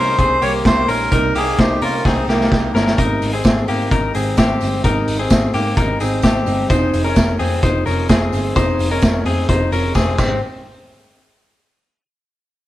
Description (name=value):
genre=jangly indie pop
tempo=129 BPM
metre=4/4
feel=straight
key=Ab major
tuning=A4 = 440 Hz
part: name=melodica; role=melody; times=0.0-2.7 s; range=Eb4 to Db5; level=-19 LUFS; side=equal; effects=none
part: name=picked steel-string acoustic guitar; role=accompaniment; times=0.0-10.4 s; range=C3 to Ab4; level=-25 LUFS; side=right 4 dB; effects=none
part: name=direct-recorded clean electric guitar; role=arpeggios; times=0.0-10.4 s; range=Bb3 to C5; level=-20 LUFS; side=left 3 dB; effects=none
part: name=vintage muted picked electric bass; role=bass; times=0.0-10.4 s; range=F1 to C3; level=-22 LUFS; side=equal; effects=none
part: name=vintage drum kit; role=drums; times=0.2-10.3 s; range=crash cymbal, hi-hat, kick drum, snare drum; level=-17 LUFS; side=equal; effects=none
part: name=tambourine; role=percussion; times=3.0-10.4 s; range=none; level=-40 LUFS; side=right 8 dB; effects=none
room=moderate stone room reverb, RT60 1.4 s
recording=band playing live in one room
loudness=-14 LUFS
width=side -15 dB against mid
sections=0.0-3.0 A section; 3.0-10.4 B section; 10.4-12.3 C section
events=drum fill 2.0-3.0, 10.0-10.4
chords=0.0 Cm7; 3.0 Abmaj7; 6.7 Fm7; 10.2 Abmaj7; 10.4 N.C.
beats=0.19 0.65 | 1.12 1.58 2.05 2.51 | 2.98 3.44 3.91 4.38 | 4.84 5.30 5.77 6.24 | 6.70 7.17 7.63 8.09 | 8.56 9.02 9.49 9.95